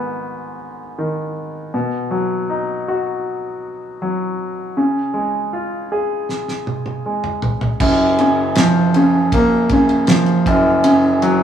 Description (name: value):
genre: pop ballad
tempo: 79 BPM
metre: 4/4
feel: straight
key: F# major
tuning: A4 = 440 Hz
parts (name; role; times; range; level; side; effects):
- bright concert grand piano; accompaniment; 0.0-11.4 s; F#1 to G#4; -16 LUFS; equal; none
- damped 70s drum kit; drums; 6.3-11.4 s; crash cymbal, kick drum, ride cymbal, snare drum, toms; -21 LUFS; right 1 dB; none
room: moderate stone room reverb, RT60 1.4 s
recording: rough rehearsal-room recording, studio reverb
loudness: -15 LUFS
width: side -9 dB against mid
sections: 0.0-7.8 A section; 7.8-11.4 B section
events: drum fill 6.3-7.8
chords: 0.0 G#m; 1.7 B; 4.8 C#; 7.8 F#maj7; 10.5 F#5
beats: 0.21 0.97 | 1.73 2.49 3.25 4.01 | 4.77 5.53 6.29 7.04 | 7.80 8.56 9.32 10.08 | 10.84